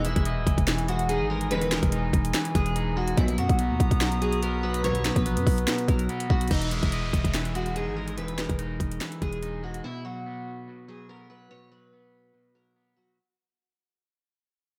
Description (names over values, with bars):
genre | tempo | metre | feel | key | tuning
hip hop, trap | 144 BPM | 4/4 | half-time | B major | A4 = 437 Hz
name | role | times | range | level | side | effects
picked steel-string acoustic guitar | melody | 0.0-13.1 s | D#4 to C#5 | -35 LUFS | equal | lush chorus, low-pass filter, tape echo
electric guitar at the edge of break-up | accompaniment | 0.0-13.2 s | B2 to D#5 | -34 LUFS | equal | low-pass filter
dark analog pad | sustained chords | 0.0-6.5 s | B3 to D#6 | -39 LUFS | equal | chorus
warm symphonic string section | stabs | 0.0-5.1 s | D#2 to G#3 | -37 LUFS | equal | none
growling 808-style bass | bass | 0.0-9.8 s | D#1 to F#2 | -31 LUFS | equal | none
trap drum kit | drums | 0.0-9.8 s | hi-hat, kick drum, snare drum | -29 LUFS | equal | none
downlifter | sound effects | 6.5-9.8 s | none | -41 LUFS | equal | none
room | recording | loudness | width
light reverb, digital ambience | none | -26 LUFS | mono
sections
0.0-6.5 A section; 6.5-13.2 B section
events
fade-out 6.5-13.2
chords
0.0 Emaj7; 3.2 Bmaj7; 6.5 Emaj7; 9.8 B5